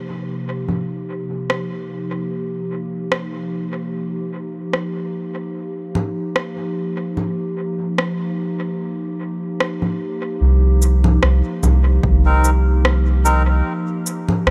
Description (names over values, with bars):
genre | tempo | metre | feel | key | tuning
ambient dub | 74 BPM | 4/4 | swing 55% on 16ths | C minor | A4 = 438 Hz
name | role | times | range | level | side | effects
warbly tape-like pad | sustained chords | 0.0-14.5 s | C3 to G4 | -27 LUFS | equal | chorus, built-in reverb
electronic congas, rim click and cabasa | drums | 0.7-14.5 s | none | -24 LUFS | equal | overdrive, dub echo
soft dub sub bass | bass | 10.4-14.5 s | C2 | -16 LUFS | equal | none
electronic kick drum | drums | 12.0-12.2 s | none | -22 LUFS | equal | overdrive
melodica | stabs | 12.3-13.4 s | C4 to Bb4 | -25 LUFS | equal | dub echo
room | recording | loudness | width
light reverb | none | -20 LUFS | mono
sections
0.0-10.4 A section; 10.4-14.5 B section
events
filter sweep on ambient pad 0.0-10.4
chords
0.0 Cm7; 3.9 Bbsus4; 10.4 Cm7